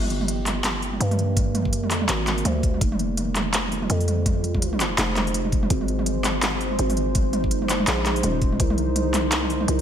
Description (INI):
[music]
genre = half-time drum and bass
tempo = 166 BPM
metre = 4/4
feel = swing 59% on 16ths, half-time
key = G phrygian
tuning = A4 = 439 Hz
[part]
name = deep dark ambient pad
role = sustained chords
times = 0.0-9.8 s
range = G3 to D5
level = -28 LUFS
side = right 2 dB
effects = chorus, built-in reverb, sidechain pumping
[part]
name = growling 808-style bass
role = bass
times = 0.0-9.8 s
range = Eb1 to G2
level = -25 LUFS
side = equal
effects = none
[part]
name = organic electronic drum kit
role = drums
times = 0.0-9.8 s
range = handclaps, hi-hat, toms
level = -24 LUFS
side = equal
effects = overdrive
[part]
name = electronic kick drum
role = drums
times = 1.4-8.7 s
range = none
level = -23 LUFS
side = equal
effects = none
[sound]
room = light reverb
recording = none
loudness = -20 LUFS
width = side -9 dB against mid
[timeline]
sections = 0.0-9.8 A section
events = none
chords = 0.0 Gm; 2.8 Fm; 5.7 Ab; 8.6 Cm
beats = 0.28 0.65 1.01 | 1.37 1.73 2.09 2.45 | 2.81 3.18 3.54 3.90 | 4.26 4.62 4.98 5.34 | 5.71 6.07 6.43 6.79 | 7.15 7.51 7.88 8.24 | 8.60 8.96 9.32 9.68